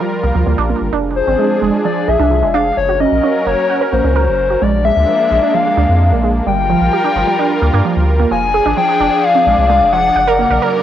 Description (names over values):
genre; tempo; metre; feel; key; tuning
IDM; 130 BPM; 4/4; straight; F melodic minor; A4 = 440 Hz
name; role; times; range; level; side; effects
warbly nostalgic lead; melody; 0.0-10.6 s; Bb4 to Ab5; -15 LUFS; left 5 dB; chorus, analog delay
warm analog pad; sustained chords; 0.0-10.8 s; Db3 to Bb4; -20 LUFS; equal; chorus, vintage 12-bit sampler grit, cassette tape
warbly dusty pluck; arpeggios; 0.0-10.7 s; F3 to Gb5; -18 LUFS; right 8 dB; chorus, cassette tape, tape echo
round analog bass; bass; 0.2-10.6 s; F1 to G2; -17 LUFS; equal; none
flickering grainy texture; texture; 8.9-10.8 s; D5; -24 LUFS; equal; built-in reverb, cassette tape
room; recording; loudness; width
wet booth ambience, RT60 0.2 s; home recording on cassette; -11 LUFS; side -10 dB against mid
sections
0.9-10.8 A section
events
none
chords
0.0 Gm7; 0.9 Fm6; 2.8 Gb; 4.6 Bb7; 6.5 Gm7; 8.3 Fm6; 10.2 Gb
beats
0.00 0.47 | 0.93 1.39 1.85 2.31 | 2.77 3.23 3.70 4.16 | 4.62 5.08 5.54 6.00 | 6.46 6.93 7.39 7.85 | 8.31 8.77 9.23 9.70 | 10.16 10.62